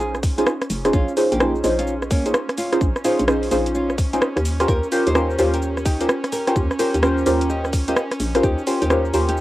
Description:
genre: UK garage, two-step garage.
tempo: 128 BPM.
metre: 4/4.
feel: swing 64% on 16ths.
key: Bb dorian.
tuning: A4 = 439 Hz.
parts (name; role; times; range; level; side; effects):
nylon-string guitar; melody; 0.0-9.4 s; Bb3 to Eb5; -27 LUFS; equal; cassette tape.
airy breathy pad; sustained chords; 0.0-9.4 s; Db4; -31 LUFS; right 1 dB; chorus, sidechain pumping, cassette tape.
deep mellow chord stab; stabs; 0.0-9.4 s; Db4 to C5; -21 LUFS; equal; chorus, phaser, vintage 12-bit sampler grit, cassette tape.
hollow knocking FM bass; bass; 0.0-9.4 s; F1 to Eb2; -24 LUFS; equal; none.
garage drum kit; drums; 0.0-9.4 s; cabasa, hi-hat, rim click; -24 LUFS; equal; overdrive.
electronic kick drum; drums; 0.2-8.6 s; none; -20 LUFS; equal; none.
room: light reverb.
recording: home recording on cassette.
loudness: -17 LUFS.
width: side -16 dB against mid.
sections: 0.0-9.4 A section.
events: none.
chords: 0.0 Bbm11; 4.4 Eb13.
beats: 0.00 0.47 | 0.93 1.40 1.87 2.34 | 2.81 3.28 3.75 4.21 | 4.68 5.15 5.62 6.09 | 6.56 7.03 7.50 7.96 | 8.43 8.90 9.37.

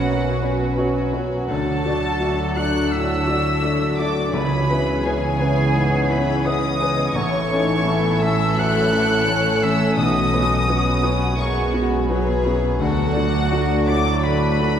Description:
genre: cinematic.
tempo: 85 BPM.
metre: 4/4.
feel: rubato.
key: unclear.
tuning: A4 = 441 Hz.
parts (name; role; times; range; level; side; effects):
rich studio violin section; melody; 0.0-14.8 s; F#5 to F#6; -29 LUFS; left 2 dB; none.
clear oboe; second line; 0.0-14.8 s; F#4 to F#5; -30 LUFS; right 1 dB; none.
silver concert flute; second line; 0.0-14.8 s; F#5 to F#6; -28 LUFS; equal; none.
warm studio violin section; second line; 0.0-14.8 s; D4 to E5; -27 LUFS; left 2 dB; none.
dark studio viola section; accompaniment; 0.0-14.8 s; D3 to D#4; -26 LUFS; right 2 dB; none.
felt-muted upright piano; accompaniment; 0.0-14.8 s; A1 to D5; -25 LUFS; left 2 dB; none.
clear French horn section; sustained chords; 0.0-14.8 s; E3 to D4; -28 LUFS; left 1 dB; none.
concert harp; arpeggios; 0.0-14.8 s; A2 to C#6; -28 LUFS; left 3 dB; none.
dark studio cello section; bass; 0.0-14.8 s; D2 to D3; -27 LUFS; right 2 dB; none.
dark studio double bass section; bass; 0.0-14.8 s; A1 to D2; -25 LUFS; right 2 dB; none.
timpani; percussion; 4.3-5.4 s; C#3; -28 LUFS; right 2 dB; none.
room: wet scoring stage reverb, RT60 1.9 s.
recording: heard from further back in the room.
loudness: -17 LUFS.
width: side -9 dB against mid.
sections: 0.0-14.8 A section.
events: none.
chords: 0.0 Bsus2; 1.5 D; 4.3 C#m7; 7.2 A; 10.0 Bsus2; 12.8 D.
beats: 0.06 0.78 | 1.49 2.20 2.91 3.62 | 4.33 5.04 5.75 6.45 | 7.16 7.86 8.57 9.27 | 9.97 10.69 11.39 12.09 | 12.80 13.52 14.23.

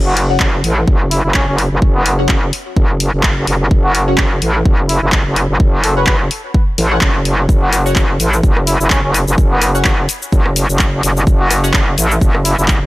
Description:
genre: bass house.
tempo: 127 BPM.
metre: 4/4.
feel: swing 56% on 16ths.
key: F# minor.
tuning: A4 = 440 Hz.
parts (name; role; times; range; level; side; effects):
metallic wobble bass; bass; 0.0-12.9 s; F#1 to A1; -14 LUFS; equal; chorus, overdrive, sidechain pumping.
trumpet with cup mute; melody; 0.1-12.6 s; B3 to B4; -21 LUFS; equal; vintage 12-bit sampler grit, tape echo.
house drum kit; drums; 0.2-12.8 s; handclaps, hi-hat, rim click, shaker; -18 LUFS; left 1 dB; none.
band-passed chord stab; stabs; 0.3-11.8 s; C#4 to F#5; -23 LUFS; left 2 dB; phaser, wide subtle chorus, sidechain pumping, tape echo.
electronic kick drum; drums; 0.4-12.8 s; none; -14 LUFS; equal; none.
room: digital ambience.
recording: none.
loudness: -11 LUFS.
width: side -18 dB against mid.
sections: 0.0-12.9 A section.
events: filter sweep on synth stab 0.0-12.9.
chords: 0.0 F#5.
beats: 0.40 0.88 1.35 | 1.82 2.29 2.77 3.24 | 3.71 4.18 4.66 5.13 | 5.60 6.07 6.54 7.02 | 7.49 7.96 8.44 8.91 | 9.38 9.85 10.32 10.80 | 11.27 11.74 12.21 12.69.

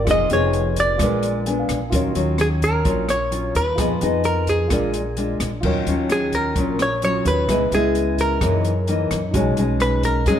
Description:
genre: bossa nova.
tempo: 130 BPM.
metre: 4/4.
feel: straight.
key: Eb minor.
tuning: A4 = 439 Hz.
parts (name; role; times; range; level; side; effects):
hollow-body jazz guitar; melody; 0.0-10.4 s; Ab4 to Eb5; -22 LUFS; right 1 dB; none.
dark grand piano; accompaniment; 0.0-10.4 s; D#4 to Ab5; -30 LUFS; right 2 dB; none.
nylon-string guitar; accompaniment; 0.0-10.4 s; Gb2 to Ab4; -22 LUFS; left 2 dB; none.
upright bass; bass; 0.0-10.4 s; F1 to Gb2; -24 LUFS; equal; none.
open jazz drum kit; drums; 0.1-10.4 s; crash cymbal, hi-hat, kick drum, rim click; -27 LUFS; right 1 dB; none.
room: light reverb.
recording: none.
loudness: -18 LUFS.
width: side -9 dB against mid.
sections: 0.0-5.6 A section; 5.6-10.4 A section.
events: grand piano fill 1.2-1.9.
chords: 0.1 Fm7b5; 1.0 Bb7b9; 1.9 Ebm9; 3.8 Fm7b5; 4.7 Bb7; 5.6 Ebm9; 7.5 Dbm7; 8.4 Gb13; 9.3 B69.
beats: | 0.08 0.54 1.00 1.47 | 1.93 2.39 2.85 3.32 | 3.78 4.24 4.71 5.17 | 5.63 6.10 6.56 7.03 | 7.49 7.95 8.41 8.88 | 9.34 9.80 10.27.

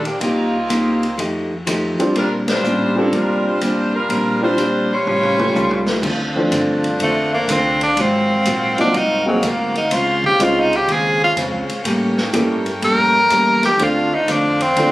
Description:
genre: jazz, big band swing.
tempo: 124 BPM.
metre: 4/4.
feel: swing 67% on 8ths.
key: unclear.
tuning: A4 = 441 Hz.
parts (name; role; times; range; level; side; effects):
clear saxophone section; melody; 0.0-5.8 s; F3 to Db5; -20 LUFS; equal; none.
vintage hollow-body jazz guitar; accompaniment; 0.0-14.9 s; Ab2 to G4; -21 LUFS; equal; none.
upright bass; bass; 0.0-14.9 s; F1 to A2; -28 LUFS; equal; none.
swinging big-band drum kit; drums; 0.1-14.9 s; crash cymbal, hi-hat, kick drum, ride cymbal, snare drum, toms; -26 LUFS; equal; none.
warm concert grand piano; accompaniment; 2.0-14.9 s; F3 to A4; -19 LUFS; equal; none.
warm saxophone section; sustained chords; 6.0-14.9 s; A3 to G5; -25 LUFS; equal; none.
edgy tenor saxophone; melody; 7.0-14.9 s; Gb3 to Bb4; -16 LUFS; equal; none.
room: light reverb.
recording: recorded on a phone in the room, studio reverb, compression.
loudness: -15 LUFS.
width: side -17 dB against mid.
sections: 0.0-6.0 A section; 6.0-14.9 B section.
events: band accent 2.4; drum fill 5.1-6.0; tenor saxophone solo 6.0-14.9.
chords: 0.2 Cm7; 1.2 F9; 2.2 Bb69; 5.1 A7alt; 6.0 Dm7; 8.0 Ab13; 9.9 Dbmaj7; 11.9 A7b9; 13.8 Dm7.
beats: | 0.21 0.70 1.18 1.67 | 2.15 2.64 3.12 3.61 | 4.10 4.58 5.07 5.55 | 6.04 6.52 7.01 7.49 | 7.98 8.46 8.95 9.43 | 9.92 10.40 10.89 11.37 | 11.86 12.34 12.83 13.31 | 13.80 14.28 14.77.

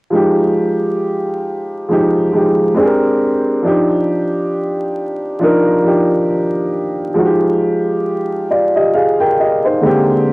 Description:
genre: hip hop.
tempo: 68 BPM.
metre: 4/4.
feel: swing 59% on 16ths.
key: F dorian.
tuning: A4 = 440 Hz.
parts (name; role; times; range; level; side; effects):
dark upright piano; solo; 0.1-10.3 s; D3 to G5; -12 LUFS; equal; cassette tape.
room: moderate booth ambience, RT60 0.2 s.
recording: home recording on cassette, vinyl crackle.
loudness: -12 LUFS.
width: side -24 dB against mid.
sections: 0.1-10.3 A section.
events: none.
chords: 0.1 Fm9; 2.8 Bb13; 3.6 Ebmaj9; 7.2 Fm9; 9.8 Bb13.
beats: | 0.12 1.00 1.88 2.76 | 3.65 4.53 5.41 6.29 | 7.17 8.06 8.94 9.82.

